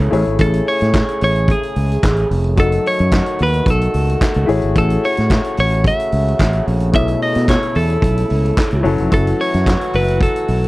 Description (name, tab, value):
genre	disco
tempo	110 BPM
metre	4/4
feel	straight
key	unclear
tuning	A4 = 437 Hz
part	clean electric guitar	melody	0.0-10.7 s	G#4 to E5	-19 LUFS	equal	vibrato effect
part	warm grand piano	accompaniment	0.0-10.7 s	B2 to C#5	-23 LUFS	left 4 dB	none
part	mellow French horn section	sustained chords	0.0-10.7 s	C#3 to G#4	-24 LUFS	right 1 dB	none
part	overdriven fingered electric bass	bass	0.0-10.7 s	E#1 to B2	-16 LUFS	equal	none
part	vintage drum kit	drums	0.1-10.7 s	handclaps, hi-hat, kick drum, snare drum	-19 LUFS	equal	none
room	little or no reverb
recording	dry, close 1970s-style studio recording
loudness	-13 LUFS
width	side -19 dB against mid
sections	0.0-10.7 A section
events	none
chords	0.1 Amaj7; 2.6 F#m6; 4.5 Amaj7; 6.9 B9sus4; 8.8 F#m7